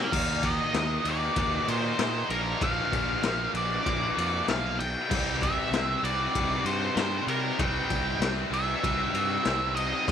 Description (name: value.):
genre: classic rock.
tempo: 96 BPM.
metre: 4/4.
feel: straight.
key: unclear.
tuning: A4 = 439 Hz.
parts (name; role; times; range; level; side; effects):
octave-fuzz lead guitar; melody; 0.0-10.1 s; Bb4 to Bb5; -29 LUFS; right 1 dB; wah, distortion.
tight distorted guitar; riff; 0.0-10.1 s; Bb2 to Eb4; -32 LUFS; right 1 dB; distortion.
fuzz fingered electric bass; bass; 0.1-10.1 s; Bb1 to C3; -33 LUFS; right 1 dB; overdrive.
raw garage drum kit; drums; 0.1-10.1 s; crash cymbal, kick drum, ride cymbal, snare drum; -30 LUFS; left 4 dB; none.
room: light reverb, small room ambience.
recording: 1960s-style stereo.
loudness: -25 LUFS.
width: side -8 dB against mid.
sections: 0.1-10.1 A section.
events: none.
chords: 0.1 Eb5; 2.3 Bb; 5.1 C.